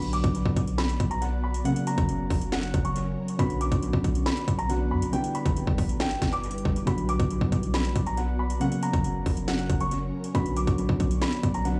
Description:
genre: hip hop, trap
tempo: 138 BPM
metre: 4/4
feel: half-time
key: B harmonic minor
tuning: A4 = 437 Hz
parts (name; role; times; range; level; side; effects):
- dark grand piano; melody; 0.0-11.8 s; F#5 to D6; -36 LUFS; equal; low-pass filter, dub echo
- dark baby grand piano; accompaniment; 0.0-11.8 s; C#3 to F#4; -33 LUFS; equal; low-pass filter, dub echo
- ethereal airy pad; sustained chords; 0.7-11.8 s; F#3 to D5; -37 LUFS; equal; ensemble chorus, built-in reverb
- warm 808-style bass; bass; 0.0-11.8 s; F#1 to F#2; -31 LUFS; equal; none
- trap drum kit; drums; 0.0-11.8 s; hi-hat, kick drum, snare drum; -31 LUFS; equal; overdrive, vintage 12-bit sampler grit
room: digital ambience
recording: echo-heavy mix, small room ambience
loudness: -26 LUFS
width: mono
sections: 0.0-11.8 A section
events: none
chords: 0.0 Bm; 1.7 F#; 3.4 Bm; 5.1 G6; 6.9 Bm; 8.6 F#; 10.3 Bm

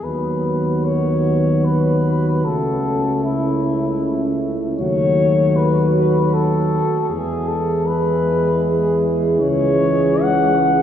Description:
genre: classical, hymn-like piece for brass band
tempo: 77 BPM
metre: 3/4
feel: rubato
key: unclear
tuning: A4 = 439 Hz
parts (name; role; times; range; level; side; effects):
- mellow flugelhorn; melody; 0.0-10.8 s; E4 to F#5; -21 LUFS; left 4 dB; none
- mellow French horn section; second line; 0.0-10.8 s; E4 to G#4; -24 LUFS; right 6 dB; none
- mellow euphonium; accompaniment; 0.0-10.8 s; G#3 to C#4; -26 LUFS; left 1 dB; none
- warm trombone; accompaniment; 0.0-10.8 s; E3 to A3; -24 LUFS; equal; none
- mellow tuba; bass; 0.0-10.8 s; C#2 to E2; -20 LUFS; equal; none
room: wet concert hall reverb, RT60 2.4 s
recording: heard from further back in the room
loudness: -15 LUFS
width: side -9 dB against mid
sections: 0.0-10.8 A section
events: none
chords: 0.0 B/D#; 2.5 A/C#; 4.8 B7/D#; 7.1 E; 9.4 C#m

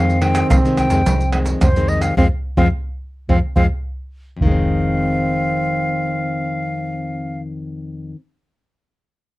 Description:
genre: samba and choro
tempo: 107 BPM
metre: 4/4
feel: straight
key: F minor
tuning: A4 = 440 Hz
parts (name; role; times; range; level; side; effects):
- wooden flute; melody; 0.0-7.4 s; C5 to G5; -23 LUFS; left 1 dB; none
- mellow trombone; second line; 0.0-7.4 s; C4; -25 LUFS; right 4 dB; none
- nylon-string guitar; accompaniment; 0.0-8.2 s; F2 to C4; -21 LUFS; left 3 dB; none
- vintage muted fingered electric bass; bass; 0.0-8.1 s; F1 to F2; -20 LUFS; equal; none
- maracas, pandeiro, tamborim and surdo; percussion; 0.1-4.5 s; none; -19 LUFS; right 1 dB; none
room: little or no reverb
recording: dry, close 1970s-style studio recording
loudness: -16 LUFS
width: side -18 dB against mid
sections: 0.0-4.4 A section; 4.4-6.6 B section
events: band accent 2.2-4.4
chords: 0.0 Fm7

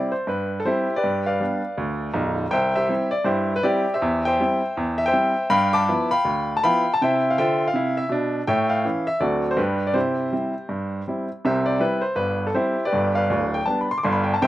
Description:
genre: jazz, stride piano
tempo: 162 BPM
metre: 4/4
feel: swing 60% on 8ths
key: C major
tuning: A4 = 440 Hz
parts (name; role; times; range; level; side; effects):
- clear baby grand piano; solo; 0.0-14.5 s; B0 to D6; -20 LUFS; equal; slapback echo
room: little or no reverb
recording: recorded outdoors, with no room sound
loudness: -20 LUFS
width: side -15 dB against mid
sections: 0.0-11.4 A section; 11.4-14.5 A section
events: none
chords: 0.0 C; 1.0 G7; 2.5 C; 4.0 C/E; 5.5 G13; 7.0 C; 8.5 A; 9.2 D7; 9.6 G; 10.0 C; 12.9 G7

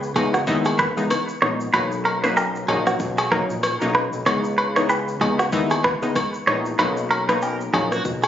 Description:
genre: afrobeats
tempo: 95 BPM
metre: 4/4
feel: swing 58% on 16ths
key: B major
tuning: A4 = 440 Hz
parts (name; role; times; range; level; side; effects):
- fat analog bass; bass; 0.0-8.3 s; A#1 to D#2; -28 LUFS; equal; none
- afro-pop drum kit; drums; 0.0-8.3 s; kick drum, rim click, shaker; -28 LUFS; left 1 dB; none
- analog pluck; accompaniment; 0.2-8.0 s; E3 to E4; -24 LUFS; left 2 dB; chorus
- clean electric guitar; riff; 0.2-8.3 s; F#4 to C#5; -23 LUFS; right 2 dB; digital delay
- agogo bells and woodblock; percussion; 0.2-8.3 s; none; -28 LUFS; left 1 dB; none
room: moderate plate reverb, RT60 1.9 s, digital ambience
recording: recorded on a phone in the room, studio reverb, nothing above 7.5 kHz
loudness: -19 LUFS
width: side -10 dB against mid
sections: 0.0-8.3 A section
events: none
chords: 0.0 C#m7; 1.7 Bmaj7; 4.3 C#m7; 6.8 Bmaj7

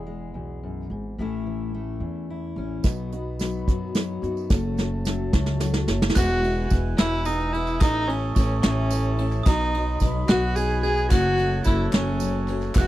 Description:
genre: indie folk with a building arrangement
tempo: 72 BPM (dotted quarters)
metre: 6/8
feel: straight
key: E major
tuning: A4 = 440 Hz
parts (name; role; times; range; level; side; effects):
- fingerpicked steel-string acoustic guitar; accompaniment; 0.0-2.9 s; E2 to G#4; -31 LUFS; left 4 dB; none
- upright bass; bass; 0.0-12.9 s; E1 to F#2; -27 LUFS; equal; none
- picked steel-string acoustic guitar; accompaniment; 2.8-12.9 s; E2 to F#4; -32 LUFS; left 8 dB; none
- mellow brass ensemble; sustained chords; 2.8-12.9 s; E4 to B5; -38 LUFS; left 2 dB; none
- soft brush drum kit; drums; 2.8-12.9 s; crash cymbal, hi-hat, kick drum, ride cymbal, snare drum; -21 LUFS; equal; none
- tambourine; percussion; 2.8-12.9 s; none; -42 LUFS; right 19 dB; none
- felt-muted upright piano; accompaniment; 2.9-12.9 s; F#1 to F#5; -36 LUFS; right 4 dB; none
- dark fiddle; melody; 6.2-12.9 s; C#4 to G#4; -25 LUFS; equal; none
- glockenspiel with soft plastic mallets; second line; 6.2-12.9 s; C#6 to G#6; -34 LUFS; right 11 dB; none
- group handclap; percussion; 6.2-12.9 s; none; -39 LUFS; left 7 dB; none
room: little or no reverb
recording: dry, close 1970s-style studio recording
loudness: -21 LUFS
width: side -15 dB against mid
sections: 0.0-6.2 A section; 6.2-12.9 B section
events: build-up 0.0-6.2; drum fill 2.8-6.2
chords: 0.0 E; 1.2 A; 2.8 B; 4.5 F#m; 6.2 E; 7.8 A; 9.5 B; 11.1 F#m

